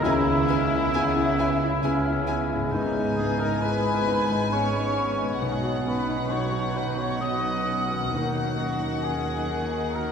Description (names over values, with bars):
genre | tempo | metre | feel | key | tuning
cinematic, emotional film score for orchestra | 67 BPM | 3/4 | rubato | C# dorian | A4 = 444 Hz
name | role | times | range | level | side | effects
warm symphonic violin section | melody | 0.0-10.1 s | F#5 to G#5 | -33 LUFS | left 4 dB | none
large flute ensemble | second line | 0.0-10.1 s | E5 to D#6 | -33 LUFS | left 1 dB | none
mellow oboe | second line | 0.0-10.1 s | E4 to D#5 | -30 LUFS | equal | none
warm clarinet | second line | 0.0-10.1 s | B3 to E4 | -34 LUFS | equal | none
warm symphonic violin section | second line | 0.0-10.1 s | E4 to D#5 | -35 LUFS | left 3 dB | none
dark symphonic viola section | accompaniment | 0.0-10.1 s | D#3 to E4 | -35 LUFS | equal | none
warm grand piano | accompaniment | 0.0-10.1 s | B1 to B4 | -30 LUFS | left 1 dB | none
concert harp | arpeggios | 0.0-10.1 s | G#2 to D#5 | -35 LUFS | left 2 dB | none
dark studio cello section | bass | 0.0-10.1 s | G#2 to D#3 | -30 LUFS | right 2 dB | none
rich symphonic double bass section | bass | 0.0-10.1 s | G#1 to D#2 | -33 LUFS | right 2 dB | none
room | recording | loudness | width
wet cathedral reverb, RT60 4.9 s | recorded in a church or concert hall | -22 LUFS | side -7 dB against mid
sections
0.0-10.1 A section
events
none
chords
0.0 C#m7; 2.7 G#m; 5.4 B; 8.1 D#m